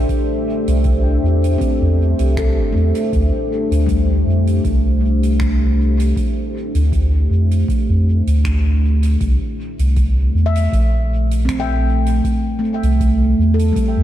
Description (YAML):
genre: ambient dub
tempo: 79 BPM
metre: 4/4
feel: swing 54% on 16ths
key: unclear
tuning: A4 = 441 Hz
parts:
  - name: deep dark ambient pad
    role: sustained chords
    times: 0.0-14.0 s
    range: A3 to E5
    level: -21 LUFS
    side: equal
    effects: chorus, built-in reverb
  - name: handpan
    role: arpeggios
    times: 0.0-14.0 s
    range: G3 to G5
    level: -24 LUFS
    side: left 2 dB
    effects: ping-pong delay
  - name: soft dub sub bass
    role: bass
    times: 0.0-14.0 s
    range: G1 to F2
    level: -15 LUFS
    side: equal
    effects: none
  - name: electronic kick drum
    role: drums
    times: 0.1-13.9 s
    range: none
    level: -22 LUFS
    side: equal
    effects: none
  - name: soft-mallet drum kit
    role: drums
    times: 0.1-13.9 s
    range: finger snaps, hi-hat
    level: -36 LUFS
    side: right 1 dB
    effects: dub echo
room: moderate lush hall reverb, RT60 2.7 s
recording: dreamy mix soaked in reverb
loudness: -14 LUFS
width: side -12 dB against mid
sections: 0.0-14.0 A section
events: none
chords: 0.0 C; 3.1 Dm7; 9.2 C